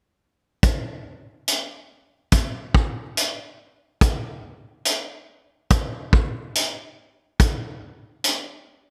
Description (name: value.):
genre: dream pop.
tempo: 71 BPM.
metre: 4/4.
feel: straight.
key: none.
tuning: none.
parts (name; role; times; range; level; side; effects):
vintage drum kit; drums; 0.6-8.4 s; hi-hat, kick drum; -22 LUFS; equal; none.
room: little or no reverb.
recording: none.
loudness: -23 LUFS.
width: mono.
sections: 0.6-8.9 A section.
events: none.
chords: none.